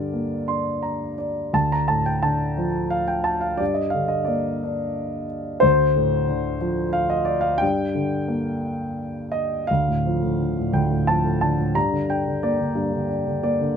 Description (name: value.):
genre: classical, lyrical solo piano.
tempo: 88 BPM.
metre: 3/4.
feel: rubato.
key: G minor.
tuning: A4 = 440 Hz.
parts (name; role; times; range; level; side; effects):
dark concert grand piano; solo; 0.0-13.8 s; D2 to C6; -20 LUFS; equal; none.
room: light reverb.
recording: minimal, uncompressed stereo recording.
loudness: -20 LUFS.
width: side -7 dB against mid.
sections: 0.0-9.7 A section; 9.7-13.8 B section.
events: grand piano fill 0.1-1.5.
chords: 0.0 Gm; 1.5 Dm; 3.6 Gm; 5.6 Dm7; 7.6 Gm; 9.7 Dm; 11.8 Gm.